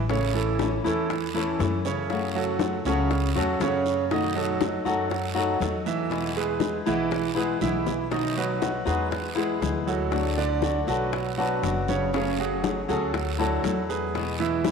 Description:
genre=latin, Cuban son and guajira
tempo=120 BPM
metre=4/4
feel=straight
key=unclear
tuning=A4 = 441 Hz
part: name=upright bass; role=bass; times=0.0-14.7 s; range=F#1 to F#2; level=-31 LUFS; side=left 1 dB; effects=none
part: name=flamenco guitar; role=accompaniment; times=0.1-14.7 s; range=B2 to G#4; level=-29 LUFS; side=left 10 dB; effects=none
part: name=bright concert grand piano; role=arpeggios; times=0.1-14.7 s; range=C#3 to E5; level=-26 LUFS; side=right 7 dB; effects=none
part: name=bongos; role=percussion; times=0.1-14.7 s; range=none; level=-34 LUFS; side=left 10 dB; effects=none
part: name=congas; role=percussion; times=0.1-14.7 s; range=none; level=-35 LUFS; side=left 9 dB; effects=none
part: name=guiro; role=percussion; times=0.1-14.7 s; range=none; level=-40 LUFS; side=right 9 dB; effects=none
room=wet plate reverb, RT60 2.9 s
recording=1960s-style stereo with parts hard left and right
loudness=-23 LUFS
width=side -6 dB against mid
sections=0.0-8.1 A section; 8.1-14.7 B section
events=drum fill 7.6-8.1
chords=0.1 A; 2.1 F#m; 4.1 B7/F#; 6.1 E; 8.1 B; 9.1 E; 10.1 D; 11.1 Bm; 12.1 F#madd9; 13.1 Dadd9; 14.1 E

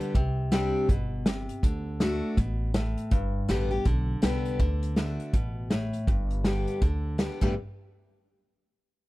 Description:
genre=honky-tonk and classic country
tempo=162 BPM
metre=4/4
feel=swing 62% on 8ths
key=G major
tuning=A4 = 440 Hz
part: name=picked steel-string acoustic guitar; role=accompaniment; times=0.0-7.5 s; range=G2 to G4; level=-30 LUFS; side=left 1 dB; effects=none
part: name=unplugged drum kit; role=drums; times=0.0-7.5 s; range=crash cymbal, hi-hat, kick drum, snare drum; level=-26 LUFS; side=equal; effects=none
part: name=upright bass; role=bass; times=0.1-7.6 s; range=G1 to D2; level=-30 LUFS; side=equal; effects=none
room=small room ambience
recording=dry, close 1970s-style studio recording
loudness=-25 LUFS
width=side -18 dB against mid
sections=0.0-4.6 A section; 4.6-7.6 B section; 7.6-9.0 C section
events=none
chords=0.2 Csus2; 1.6 D; 3.1 Gadd9; 4.6 D; 6.1 G; 7.4 Gadd9; 7.6 N.C.

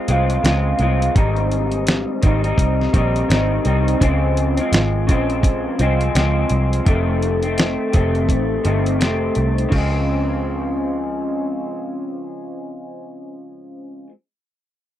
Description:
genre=indie pop, bedroom pop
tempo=84 BPM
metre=4/4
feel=swing 60% on 16ths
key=Db lydian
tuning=A4 = 439 Hz
part: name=electric guitar through a small old amp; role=accompaniment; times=0.0-14.1 s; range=F2 to F4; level=-20 LUFS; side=left 1 dB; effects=analog chorus, vibrato effect
part: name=vintage muted picked electric bass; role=bass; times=0.1-14.0 s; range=F1 to Db2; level=-20 LUFS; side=equal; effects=none
part: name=dusty soul sampler-style drum kit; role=drums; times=0.1-9.9 s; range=crash cymbal, hi-hat, kick drum, snare drum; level=-18 LUFS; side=equal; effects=none
room=light reverb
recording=dry, close 1970s-style studio recording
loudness=-16 LUFS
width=side -12 dB against mid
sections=0.0-4.0 A section; 4.0-9.7 B section; 9.7-12.6 C section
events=none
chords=0.0 Dbmaj7; 1.2 Abmaj7; 4.0 Dbmaj7; 6.9 F7; 9.7 Dbmaj7

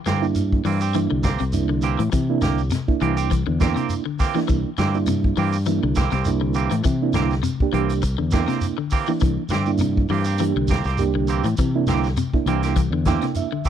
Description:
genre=afrobeat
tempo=102 BPM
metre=4/4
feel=swing 54% on 16ths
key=C mixolydian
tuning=A4 = 440 Hz
part: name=electric guitar at the edge of break-up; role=arpeggios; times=0.1-13.7 s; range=C3 to E3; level=-26 LUFS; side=left 10 dB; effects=spring reverb
part: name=clean electric guitar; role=stabs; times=0.1-13.7 s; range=E3 to G4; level=-27 LUFS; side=right 10 dB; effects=none
part: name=fingered electric bass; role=bass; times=0.1-13.2 s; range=C2 to C3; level=-23 LUFS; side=equal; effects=none
part: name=vintage drum kit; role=drums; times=0.1-13.7 s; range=hi-hat, kick drum, snare drum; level=-24 LUFS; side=left 1 dB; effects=none
part: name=shekere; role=percussion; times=0.1-13.7 s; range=none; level=-30 LUFS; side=right 1 dB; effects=none
part: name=mellow reed electric piano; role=accompaniment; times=0.2-13.7 s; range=Bb3 to G5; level=-25 LUFS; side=right 11 dB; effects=fast tremolo
room=small room ambience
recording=dry, close 1970s-style studio recording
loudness=-19 LUFS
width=side -9 dB against mid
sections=0.0-13.7 A section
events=reed electric piano fill 12.8-13.7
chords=0.0 C7

